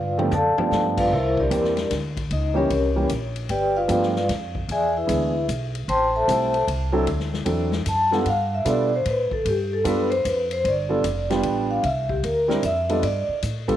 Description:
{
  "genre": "jazz, small-group swing and bop",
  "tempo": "151 BPM",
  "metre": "3/4",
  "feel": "swing 65% on 8ths",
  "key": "G mixolydian",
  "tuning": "A4 = 441 Hz",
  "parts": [
    { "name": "vibraphone with medium mallets", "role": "melody", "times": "0.0-13.4 s", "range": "C#4 to C6", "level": "-22 LUFS", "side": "left 1 dB", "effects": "none" },
    { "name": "upright bass", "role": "bass", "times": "0.0-13.8 s", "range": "F1 to B2", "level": "-27 LUFS", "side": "equal", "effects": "none" },
    { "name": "warm concert grand piano", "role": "accompaniment", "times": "0.2-13.8 s", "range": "E3 to Bb4", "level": "-25 LUFS", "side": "right 2 dB", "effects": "none" },
    { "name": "swinging big-band drum kit", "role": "drums", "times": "0.2-13.7 s", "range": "crash cymbal, hi-hat, kick drum, ride cymbal, snare drum, toms", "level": "-32 LUFS", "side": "left 4 dB", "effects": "none" }
  ],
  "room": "moderate spring reverb, RT60 1.7 s, studio ambience",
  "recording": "1960s-style stereo",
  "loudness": "-20 LUFS",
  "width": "side -12 dB against mid",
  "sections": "0.0-10.6 A section; 10.6-13.8 A section",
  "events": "drum fill 0.0-0.7; vibraphone solo 0.0-13.8",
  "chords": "0.0 G9; 1.1 C9; 2.3 C#dim7; 3.5 G9; 4.7 E7; 5.9 Am7; 7.1 D9; 8.3 G9; 11.8 C9; 13.0 Gsus2"
}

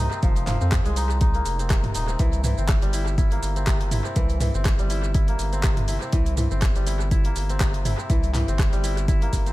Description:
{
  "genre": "afro house",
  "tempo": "122 BPM",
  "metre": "4/4",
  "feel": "swing 56% on 16ths",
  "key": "unclear",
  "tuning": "A4 = 442 Hz",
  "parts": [
    { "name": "kora", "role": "arpeggios", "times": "0.0-9.5 s", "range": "C3 to E4", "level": "-29 LUFS", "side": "left 1 dB", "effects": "sidechain pumping, analog delay" },
    { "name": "round analog bass", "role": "bass", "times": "0.0-9.5 s", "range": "Eb1 to F2", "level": "-25 LUFS", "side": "equal", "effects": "sidechain pumping" },
    { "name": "deep house drum kit", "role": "drums", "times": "0.1-9.5 s", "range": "handclaps, hi-hat, rim click, shaker, toms", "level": "-29 LUFS", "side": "right 1 dB", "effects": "analog delay" },
    { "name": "electronic kick drum", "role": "drums", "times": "0.2-9.4 s", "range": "none", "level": "-21 LUFS", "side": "equal", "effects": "none" }
  ],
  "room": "little or no reverb",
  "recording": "echo-heavy mix",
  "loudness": "-20 LUFS",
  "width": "side -18 dB against mid",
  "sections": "0.0-9.5 A section",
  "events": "none",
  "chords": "0.0 Fm7; 2.2 C7"
}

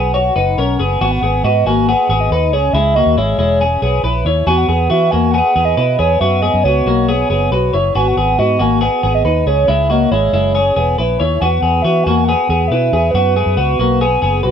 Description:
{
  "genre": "jangly indie pop",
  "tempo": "138 BPM",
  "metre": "4/4",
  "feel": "straight",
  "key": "G# minor",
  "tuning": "A4 = 445 Hz",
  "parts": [
    { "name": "hollow clarinet-like synth lead", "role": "melody", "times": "0.0-14.4 s", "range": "B4 to G#5", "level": "-17 LUFS", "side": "right 3 dB", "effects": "chorus, phaser" },
    { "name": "twelve-string electric guitar", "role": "arpeggios", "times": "0.0-14.5 s", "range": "G#3 to C#5", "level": "-15 LUFS", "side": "left 3 dB", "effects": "none" },
    { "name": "vintage muted fingered electric bass", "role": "bass", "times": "0.0-14.5 s", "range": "E1 to E3", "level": "-17 LUFS", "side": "right 1 dB", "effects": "none" }
  ],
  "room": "light reverb",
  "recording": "rough home demo mix",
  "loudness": "-12 LUFS",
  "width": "side -8 dB against mid",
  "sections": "0.0-1.0 A section; 1.0-14.5 B section",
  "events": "none",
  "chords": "0.0 F#sus4; 1.0 G#m7; 2.5 C#m; 4.5 E; 6.2 F#sus4; 7.9 G#m7; 9.5 C#m; 11.4 E; 13.1 F#sus4"
}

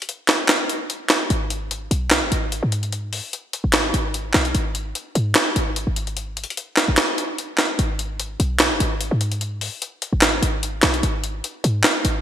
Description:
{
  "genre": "hip hop, trap",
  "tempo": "148 BPM",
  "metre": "4/4",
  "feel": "half-time",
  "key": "unclear",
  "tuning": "A4 = 440 Hz",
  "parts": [
    { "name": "breakbeat sampler-style drum kit", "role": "drums", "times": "0.0-12.1 s", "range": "handclaps, hi-hat, snare drum", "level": "-19 LUFS", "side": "equal", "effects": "gated reverb" },
    { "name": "short 808-style bass", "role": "bass", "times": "1.3-12.2 s", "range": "F#1 to G#2", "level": "-22 LUFS", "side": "equal", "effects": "none" }
  ],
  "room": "moderate lush hall reverb, RT60 1.6 s",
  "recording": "bright 1980s-style digital production",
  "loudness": "-19 LUFS",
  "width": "side -10 dB against mid",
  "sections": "0.0-7.8 A section; 7.8-12.2 B section",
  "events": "break 0.0-1.3; kick muted 0.5-1.3, 7.0-7.8",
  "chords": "none"
}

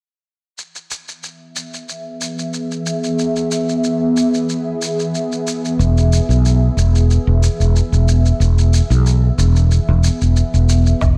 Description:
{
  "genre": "organic downtempo",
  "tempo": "92 BPM",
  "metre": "4/4",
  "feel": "swing 54% on 16ths",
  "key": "E major",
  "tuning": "A4 = 442 Hz",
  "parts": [
    { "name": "ethereal airy pad", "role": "sustained chords", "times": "2.0-11.0 s", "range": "E3 to E5", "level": "-23 LUFS", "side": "equal", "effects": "ensemble chorus, built-in reverb, phaser, sidechain pumping" },
    { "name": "shaker and woodblock", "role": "drums", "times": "0.6-11.2 s", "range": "none", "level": "-30 LUFS", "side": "equal", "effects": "studio reverb" },
    { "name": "mellow fretless electric bass", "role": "bass", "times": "5.8-11.2 s", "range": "E1 to B1", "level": "-14 LUFS", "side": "equal", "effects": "none" },
    { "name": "electronic kick drum", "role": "drums", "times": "11.0-11.2 s", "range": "none", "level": "-18 LUFS", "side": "equal", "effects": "studio reverb" }
  ],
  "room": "light reverb",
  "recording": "dark, warm production",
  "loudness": "-16 LUFS",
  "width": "mono",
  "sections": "0.6-11.0 A section",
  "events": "filter sweep on ambient pad 0.6-11.0",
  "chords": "0.6 E"
}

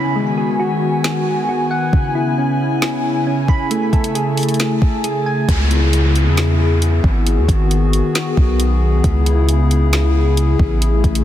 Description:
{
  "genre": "hip hop, atmospheric cloud-rap",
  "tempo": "135 BPM",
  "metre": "4/4",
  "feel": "half-time",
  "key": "C# minor",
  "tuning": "A4 = 440 Hz",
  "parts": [
    { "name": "hollow soft pad", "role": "sustained chords", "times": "0.0-11.2 s", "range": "C#3 to G#5", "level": "-18 LUFS", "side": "left 2 dB", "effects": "chorus, sidechain pumping" },
    { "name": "soft electric-piano-like synth keys", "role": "arpeggios", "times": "0.0-5.5 s", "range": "C#3 to B5", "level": "-22 LUFS", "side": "right 3 dB", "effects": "chorus, tape echo" },
    { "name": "downlifter", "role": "sound effects", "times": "0.0-1.9, 5.5-9.0 s", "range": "none", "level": "-29 LUFS", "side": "equal", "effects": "none" },
    { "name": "smooth R&B drum kit", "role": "drums", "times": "1.0-11.2 s", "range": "hi-hat, kick drum, snare drum", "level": "-20 LUFS", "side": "equal", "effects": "none" },
    { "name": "long sustained 808-style bass", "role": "bass", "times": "5.5-11.2 s", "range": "G#1 to E2", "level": "-15 LUFS", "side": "equal", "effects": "none" }
  ],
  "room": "light reverb",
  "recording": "dense, heavily limited modern master",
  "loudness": "-14 LUFS",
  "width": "side -12 dB against mid",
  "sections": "0.0-5.5 A section; 5.5-11.2 B section",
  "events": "none",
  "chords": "0.2 G#m7; 1.9 C#m7; 3.7 Amaj7; 5.5 C#m7; 7.3 G#m7; 9.0 C#m7"
}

